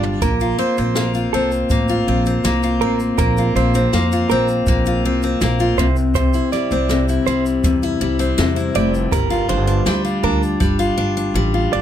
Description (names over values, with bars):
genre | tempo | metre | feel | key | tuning
acoustic pop | 81 BPM | 4/4 | straight | unclear | A4 = 440 Hz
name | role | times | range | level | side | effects
picked steel-string acoustic guitar | accompaniment | 0.0-11.8 s | C3 to F4 | -18 LUFS | left 2 dB | none
direct-recorded clean electric guitar | arpeggios | 0.0-11.8 s | A4 to D5 | -23 LUFS | right 12 dB | none
upright bass | bass | 0.0-11.8 s | F1 to F2 | -20 LUFS | right 1 dB | none
jazz brush drum kit | drums | 0.0-11.3 s | kick drum, shaker, snare drum, toms | -23 LUFS | equal | none
room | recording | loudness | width
little or no reverb | close, detailed microphones | -15 LUFS | side -10 dB against mid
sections
0.2-11.8 A section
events
drum fill 0.0, 11.4-11.8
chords
0.2 Bbsus2; 5.8 C; 9.1 Gm7